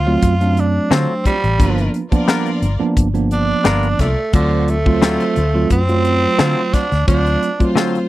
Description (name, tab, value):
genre	straight-eighth soul blues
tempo	88 BPM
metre	4/4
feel	straight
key	unclear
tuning	A4 = 440 Hz
part	growling tenor saxophone	second line	0.0-7.7 s	D3 to E#4	-19 LUFS	right 2 dB	slapback echo
part	clear studio string section	sustained chords	0.0-8.1 s	E#4 to D5	-29 LUFS	left 2 dB	none
part	vintage muted fingered electric bass	bass	0.0-7.4 s	G1 to D3	-18 LUFS	left 1 dB	none
part	bright tine electric piano	accompaniment	0.1-8.1 s	F3 to E#4	-19 LUFS	right 3 dB	medium stereo tremolo
part	tight funk drum kit	drums	0.2-8.1 s	hi-hat, kick drum, snare drum	-16 LUFS	left 1 dB	none
part	direct-recorded clean electric guitar	stabs	0.9-8.0 s	D3 to A#4	-20 LUFS	left 6 dB	none
room	little or no reverb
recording	dry, close 1970s-style studio recording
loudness	-13 LUFS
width	side -16 dB against mid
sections	0.0-8.1 A section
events	tenor saxophone solo 0.0-8.1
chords	0.0 D7#9; 1.6 G7#9; 4.3 D7#9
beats	0.23 0.92 | 1.60 2.29 2.97 3.66 | 4.34 5.03 5.71 6.39 | 7.08 7.76